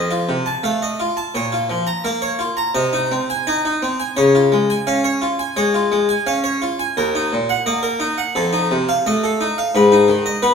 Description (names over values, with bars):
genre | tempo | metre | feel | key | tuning
classical, baroque-style suite movement for harpsichord | 86 BPM | 4/4 | rubato | unclear | A4 = 435 Hz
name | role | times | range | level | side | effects
harpsichord | solo | 0.0-10.5 s | Eb2 to Bb5 | -16 LUFS | left 1 dB | none
room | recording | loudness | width
wet recital hall reverb, RT60 1.4 s | minimal, uncompressed stereo recording | -16 LUFS | side -6 dB against mid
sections
0.0-10.5 A section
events
none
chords
0.0 F7; 1.3 Bbm; 2.8 Ab/C; 4.2 Db; 7.0 Ebm; 8.4 F7; 9.8 Abm